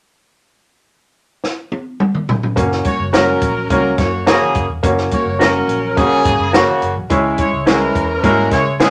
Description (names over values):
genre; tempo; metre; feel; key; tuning
uptempo 1960s-style soul; 106 BPM; 4/4; straight; F# mixolydian; A4 = 439 Hz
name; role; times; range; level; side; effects
compact cocktail drum kit; drums; 1.4-8.9 s; hi-hat, kick drum, snare drum, toms; -20 LUFS; equal; none
clear baby grand piano; accompaniment; 2.6-8.9 s; G#3 to C#5; -20 LUFS; equal; none
vintage muted fingered electric bass; bass; 2.6-8.9 s; E1 to C#3; -26 LUFS; equal; none
congas; percussion; 2.6-8.7 s; none; -30 LUFS; equal; none
warm horn section; second line; 2.9-8.9 s; C#3 to C#5; -19 LUFS; equal; none
electric guitar through a small old amp; stabs; 3.1-8.9 s; E4 to C#5; -22 LUFS; equal; none
room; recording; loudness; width
wet studio reverb, RT60 0.5 s; none; -15 LUFS; mono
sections
0.3-2.6 A section; 2.6-8.9 B section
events
drum fill 1.4-2.6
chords
0.3 N.C.; 2.6 F#